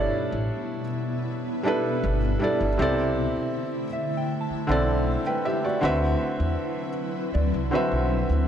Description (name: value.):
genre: contemporary R&B.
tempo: 79 BPM.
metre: 4/4.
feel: straight.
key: G major.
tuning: A4 = 440 Hz.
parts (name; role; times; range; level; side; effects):
felt-muted upright piano; accompaniment; 0.0-8.5 s; C3 to G5; -26 LUFS; right 1 dB; none.
ethereal airy pad; sustained chords; 0.0-8.5 s; B2 to B4; -30 LUFS; left 1 dB; ensemble chorus, built-in reverb, tremolo.
upright bass; bass; 0.0-8.4 s; G1 to E2; -26 LUFS; equal; none.
soft synth bell; texture; 0.0-8.4 s; D5 to A5; -37 LUFS; left 1 dB; chorus, analog delay.
room: light reverb.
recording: dry, gritty hardware recording.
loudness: -23 LUFS.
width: side -9 dB against mid.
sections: 0.0-8.5 A section.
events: none.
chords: 0.0 G69; 2.8 C69; 5.8 D13.